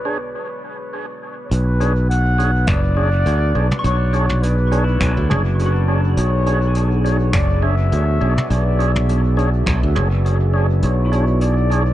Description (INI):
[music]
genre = ambient dub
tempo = 103 BPM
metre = 4/4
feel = swing 55% on 16ths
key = B dorian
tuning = A4 = 440 Hz
[part]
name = trumpet with bucket mute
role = melody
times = 0.0-11.9 s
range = B4 to F#5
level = -25 LUFS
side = left 1 dB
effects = dub echo
[part]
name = deep dark ambient pad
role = sustained chords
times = 0.0-11.9 s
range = B3 to B4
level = -28 LUFS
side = right 2 dB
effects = chorus, built-in reverb
[part]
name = modern bright fingered electric bass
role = bass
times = 0.0-11.9 s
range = F#1 to D2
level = -16 LUFS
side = equal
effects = none
[part]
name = tonewheel organ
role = stabs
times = 0.1-11.8 s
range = D4 to C#5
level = -26 LUFS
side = right 1 dB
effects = slow rotary speaker, dub echo
[part]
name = jazz brush drum kit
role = drums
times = 1.5-11.8 s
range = finger snaps, hi-hat, toms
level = -26 LUFS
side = equal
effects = dub echo
[part]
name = electronic kick drum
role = drums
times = 2.7-9.8 s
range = none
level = -22 LUFS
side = equal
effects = overdrive
[part]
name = pedal steel guitar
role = arpeggios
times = 3.8-11.9 s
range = D4 to C#6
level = -30 LUFS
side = left 2 dB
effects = vintage 12-bit sampler grit, dub echo
[sound]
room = little or no reverb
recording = echo-heavy mix, nothing above 10.9 kHz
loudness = -15 LUFS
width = side -14 dB against mid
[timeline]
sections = 0.0-1.5 A section; 1.5-11.9 B section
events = break 0.3-1.5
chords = 0.0 Bm69